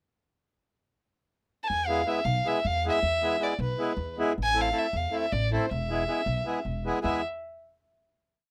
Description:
balkan folk, Balkan wedding band; 314 BPM (eighths); 7/8; straight; E phrygian dominant; A4 = 441 Hz
dark violin; melody; 1.6-7.2 s; B4 to A5; -31 LUFS; equal
upright bass; bass; 1.7-7.2 s; E1 to E2; -34 LUFS; equal
accordion; accompaniment; 1.9-7.2 s; G#3 to A4; -31 LUFS; equal
light reverb; rough home demo mix; -28 LUFS; mono
0.4-1.7 pickup bar; 1.7-7.0 A section; 7.0-8.4 final chord
0.4 N.C.; 1.7 E; 4.4 Am; 5.7 E
| 0.36 0.55 0.74 0.93 1.12 1.31 1.50 | 1.70 1.89 2.08 2.27 2.46 2.65 2.84 | 3.04 3.23 3.42 3.61 3.80 3.99 4.18 | 4.37 4.56 4.75 4.95 5.14 5.33 5.52 | 5.71 5.90 6.09 6.28 6.47 6.66 6.85 | 7.04

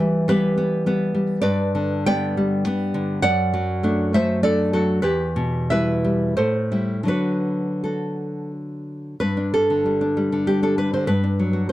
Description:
romantic piece for solo classical guitar; 78-107 BPM; 3/4; rubato; G major; A4 = 440 Hz
nylon-string guitar; solo; 0.0-11.7 s; E2 to G5; -19 LUFS; equal
light reverb; dark, warm production; -19 LUFS; side -15 dB against mid
0.0-9.2 A section; 9.2-11.7 B section
0.0 Em; 1.4 G; 3.2 D/F#; 5.0 Em; 6.4 Am7; 7.1 D; 9.2 G5; 11.1 D/G
0.28 0.85 | 1.42 2.06 2.65 | 3.22 3.83 4.43 | 5.03 5.71 6.37 | 7.08 7.84 8.54 | 9.21 9.85 10.46 | 11.07 11.68

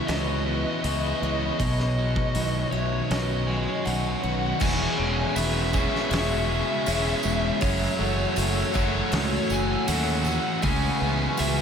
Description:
rock, shoegaze and dream pop; 80 BPM; 4/4; straight; E major; A4 = 440 Hz
fuzz lead guitar; melody; 0.0-11.6 s; C#5 to G#5; -30 LUFS; left 1 dB; distortion, analog delay
chorused pulse-width pad; sustained chords; 0.0-11.6 s; A3 to E6; -33 LUFS; left 1 dB
picked twelve-string acoustic guitar; arpeggios; 0.0-11.6 s; D#4 to G#5; -36 LUFS; left 8 dB; lush chorus, analog delay
biting overdriven guitar; riff; 0.0-11.6 s; F#2 to B4; -30 LUFS; right 6 dB; reverse reverb
fuzz guitar; riff; 0.0-11.6 s; F#2 to B4; -31 LUFS; left 7 dB; distortion, lush chorus
growling fingered electric bass; bass; 0.1-11.6 s; E1 to D#2; -28 LUFS; equal; overdrive
loose indie drum kit; drums; 0.1-11.6 s; crash cymbal, hi-hat, kick drum, snare drum; -31 LUFS; equal
distorted electric guitar; riff; 4.6-11.6 s; E2 to C#4; -31 LUFS; equal; overdrive
tambourine; percussion; 4.6-11.6 s; -39 LUFS; right 9 dB
wet cathedral reverb, RT60 5.7 s; dreamy mix soaked in reverb; -22 LUFS; side -7 dB against mid
0.0-4.6 A section; 4.6-11.6 B section
0.0 C#m7; 1.6 Badd9; 4.6 E6; 7.6 F#m7; 10.6 C#m7
0.09 0.84 | 1.60 2.35 3.11 3.86 | 4.61 5.37 6.12 6.87 | 7.62 8.38 9.13 9.88 | 10.63 11.38

